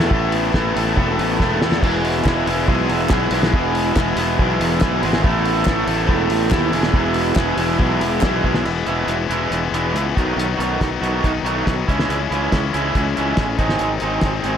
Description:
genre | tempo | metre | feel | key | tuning
indie rock | 140 BPM | 4/4 | straight | E major | A4 = 445 Hz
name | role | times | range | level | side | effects
distorted electric guitar | riff | 0.0-14.6 s | G#2 to A4 | -21 LUFS | left 9 dB | overdrive
raw garage guitar | riff | 0.0-14.6 s | E2 to G#4 | -22 LUFS | right 8 dB | overdrive, lush chorus, digital delay
fuzz fingered electric bass | bass | 0.0-14.6 s | E1 to E2 | -24 LUFS | equal | overdrive
cloth-damped thuddy drum kit | drums | 0.0-14.5 s | crash cymbal, hi-hat, kick drum, snare drum | -22 LUFS | equal | none
group handclap | percussion | 2.2-8.3 s | none | -34 LUFS | left 6 dB | none
room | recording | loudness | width
light reverb | none | -16 LUFS | side -8 dB against mid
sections
0.0-8.7 A section; 8.7-14.6 B section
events
drum fill 1.4-1.8, 8.4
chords
0.0 Asus2; 1.8 E; 5.2 Asus2; 6.7 E; 10.2 B7; 11.9 C#m; 13.6 G#5

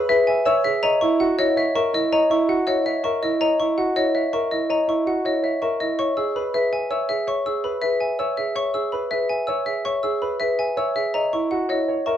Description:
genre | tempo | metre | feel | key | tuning
classical, minimalist pattern music | 326 BPM (eighths) | 7/8 | straight | E lydian | A4 = 439 Hz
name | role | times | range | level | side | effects
warm concert grand piano | arpeggios | 0.0-12.2 s | E4 to E5 | -23 LUFS | right 4 dB | none
xylophone with wooden mallets | arpeggios | 0.0-12.2 s | D#5 to E6 | -25 LUFS | left 1 dB | none
marimba with medium hard mallets | melody | 0.1-12.2 s | B4 to E5 | -24 LUFS | left 4 dB | none
room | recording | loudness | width
moderate stone room reverb, RT60 1.2 s | dark, warm production | -19 LUFS | side -10 dB against mid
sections
0.0-12.2 A section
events
none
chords
0.0 E; 0.8 F#7; 6.0 E; 11.1 F#7

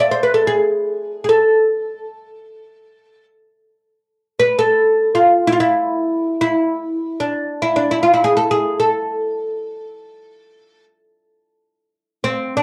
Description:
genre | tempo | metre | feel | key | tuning
Arabic maqam ensemble | free time | none | none | A maqam nahawand | A4 = 440 Hz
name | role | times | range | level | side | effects
oud | solo | 0.0-12.6 s | C4 to D5 | -17 LUFS | equal | cassette tape
room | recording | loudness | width
wet studio reverb, RT60 0.5 s | home recording on cassette | -17 LUFS | mono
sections
0.0-12.6 A section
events
none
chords
none

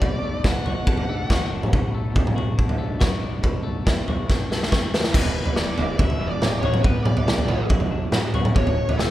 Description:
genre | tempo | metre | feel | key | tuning
indie rock | 140 BPM | 4/4 | straight | B minor | A4 = 437 Hz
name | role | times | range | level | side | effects
bluesy overdriven lead guitar | melody | 0.0-1.5, 5.1-9.1 s | A4 to F#5 | -30 LUFS | left 2 dB | distortion, tape echo
twelve-string electric guitar | riff | 0.0-9.1 s | E2 to F#4 | -32 LUFS | left 6 dB | none
fuzz fingered electric bass | bass | 0.0-9.1 s | E1 to B2 | -31 LUFS | equal | none
raw garage drum kit | drums | 0.0-9.1 s | crash cymbal, kick drum, snare drum, toms | -20 LUFS | equal | none
overdriven electric guitar | riff | 5.1-9.1 s | E2 to B3 | -32 LUFS | right 7 dB | lush chorus
room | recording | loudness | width
little or no reverb | rough home demo mix | -19 LUFS | side -14 dB against mid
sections
0.0-5.1 A section; 5.1-9.1 B section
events
drum fill 4.3-5.1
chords
0.0 Bm7; 5.1 Eadd9; 6.8 Bm; 8.5 E5

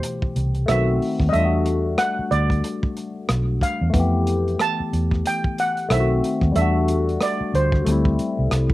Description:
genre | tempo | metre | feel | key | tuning
R&B, neo-soul | 92 BPM | 4/4 | swing 60% on 16ths | unclear | A4 = 440 Hz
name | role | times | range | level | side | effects
steel pan | melody | 0.0-8.5 s | C5 to A5 | -24 LUFS | right 2 dB | slapback echo
barky tine electric piano | accompaniment | 0.0-8.7 s | B2 to G4 | -24 LUFS | left 3 dB | overdrive, phaser, slapback echo
crunchy breakbeat drum kit | drums | 0.0-8.7 s | hi-hat, kick drum, rim click | -24 LUFS | equal | none
vintage muted fingered electric bass | bass | 0.4-8.7 s | B1 to F2 | -21 LUFS | equal | none
room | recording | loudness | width
little or no reverb | recorded outdoors, with no room sound | -18 LUFS | side -16 dB against mid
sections
0.0-8.7 A section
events
none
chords
0.0 Fmaj9#11 (rootless); 0.7 B7b9; 1.3 Em11; 3.9 Fmaj9#11; 5.9 B7b9; 6.5 Em11; 7.8 D9sus4

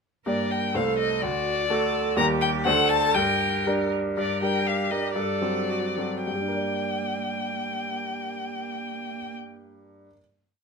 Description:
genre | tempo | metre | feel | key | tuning
quick classical-period movement for piano trio | 100-128 BPM | 2/4 | rubato | G minor | A4 = 440 Hz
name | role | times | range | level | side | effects
rich violin | melody | 0.3-9.3 s | D5 to Bb5 | -27 LUFS | left 6 dB | none
clear cello | second line | 0.3-9.3 s | Bb3 to Bb4 | -31 LUFS | right 8 dB | none
bright baby grand piano | accompaniment | 0.3-10.2 s | C2 to D5 | -27 LUFS | equal | none
room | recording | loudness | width
moderate studio reverb, RT60 0.6 s | minimal, uncompressed stereo recording | -23 LUFS | side -4 dB against mid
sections
0.3-4.2 A section; 4.2-6.3 coda; 6.3-8.6 final chord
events
slowing down 3.7-6.3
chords
0.3 Gm; 0.7 Adim/C; 1.2 D; 2.2 Eb; 2.7 D7; 3.2 Gm; 5.2 D7/G; 6.3 Gm

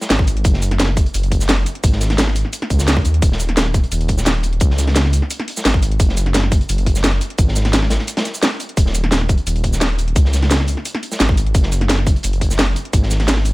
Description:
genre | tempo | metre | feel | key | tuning
liquid drum and bass | 173 BPM | 4/4 | straight | unclear | A4 = 440 Hz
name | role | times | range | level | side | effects
crunchy breakbeat drum kit | drums | 0.0-13.5 s | hi-hat, snare drum | -25 LUFS | equal | high-pass filter on hats, high-pass filter on snare, high-pass filter on room
drum and bass drum kit | drums | 0.0-13.5 s | hi-hat, shaker, snare drum | -20 LUFS | equal | none
dark detuned saw bass | bass | 0.1-13.5 s | Eb1 to Eb2 | -17 LUFS | equal | none
electronic kick drum | drums | 0.2-13.0 s | none | -15 LUFS | equal | none
room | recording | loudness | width
little or no reverb | none | -14 LUFS | side -20 dB against mid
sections
0.0-13.5 A section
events
break 8.1-8.8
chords
none

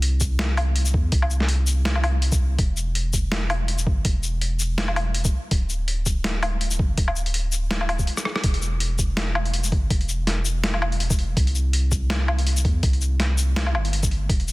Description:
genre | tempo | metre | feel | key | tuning
half-time drum and bass | 164 BPM | 4/4 | swing 56% on 16ths, half-time | unclear | A4 = 442 Hz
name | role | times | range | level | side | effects
saturated sub bass | bass | 0.0-14.5 s | D1 to E2 | -23 LUFS | equal | none
boom bap sampler-style drum kit | drums | 0.0-14.5 s | hi-hat, rim click, shaker, snare drum, woodblock | -26 LUFS | left 1 dB | overdrive, studio reverb
electronic kick drum | drums | 0.2-14.4 s | none | -21 LUFS | equal | overdrive, studio reverb
room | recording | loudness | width
digital ambience | dense, heavily limited modern master | -20 LUFS | side -21 dB against mid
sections
0.0-8.4 A section; 8.4-14.5 A section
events
drop 0.0-8.4, 8.4-14.5; drum fill 8.2; band accent 8.3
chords
none

